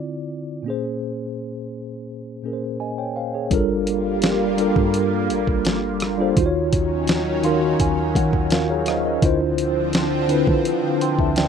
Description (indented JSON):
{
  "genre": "contemporary R&B",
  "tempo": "84 BPM",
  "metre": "4/4",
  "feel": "straight",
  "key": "G minor",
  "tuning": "A4 = 440 Hz",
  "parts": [
    { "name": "mellow tine electric piano", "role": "accompaniment", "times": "0.0-11.5 s", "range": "Bb2 to C6", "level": "-21 LUFS", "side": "equal", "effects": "medium stereo tremolo" },
    { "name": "lush unison pad", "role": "sustained chords", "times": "3.8-11.5 s", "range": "D3 to F4", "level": "-24 LUFS", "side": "right 1 dB", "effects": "chorus, phaser" },
    { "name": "clean 808-style bass", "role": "bass", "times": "3.5-11.5 s", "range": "G1 to Eb3", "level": "-29 LUFS", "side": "equal", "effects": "none" },
    { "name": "dusty soul sampler-style drum kit", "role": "drums", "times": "3.5-11.5 s", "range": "hi-hat, kick drum, rim click, snare drum", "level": "-22 LUFS", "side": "equal", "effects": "none" }
  ],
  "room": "little or no reverb",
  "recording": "rough home demo mix",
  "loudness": "-18 LUFS",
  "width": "side -7 dB against mid",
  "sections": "0.0-3.5 A section; 3.5-11.5 B section",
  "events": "tine electric piano fill 7.1-9.2",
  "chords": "0.0 Dm7; 0.7 Bbm7; 3.5 Gm7; 6.4 Ebm7; 9.2 Dm7",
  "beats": "| 0.65 1.37 2.08 2.80 | 3.51 4.22 4.94 5.65 | 6.37 7.08 7.80 8.51 | 9.22 9.94 10.65 11.37"
}